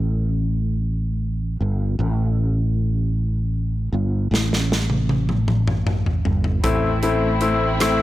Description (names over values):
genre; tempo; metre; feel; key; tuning
six-eight pop ballad; 52 BPM (dotted quarters); 6/8; straight; unclear; A4 = 439 Hz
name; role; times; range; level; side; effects
fretless electric bass; bass; 0.0-8.0 s; G1 to A1; -21 LUFS; equal; ensemble chorus
modern studio drum kit; drums; 4.3-8.0 s; hi-hat, kick drum, rim click, snare drum, toms; -21 LUFS; equal; none
bright concert grand piano; accompaniment; 6.6-8.0 s; A3 to E4; -19 LUFS; left 4 dB; none
rich studio string section; sustained chords; 6.6-8.0 s; A3 to E4; -26 LUFS; equal; none
room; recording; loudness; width
light reverb; blown-out, overdriven recording, overdrive; -19 LUFS; side -15 dB against mid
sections
0.0-8.0 A section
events
drum fill 4.3-6.6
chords
0.0 Gsus2; 6.6 Am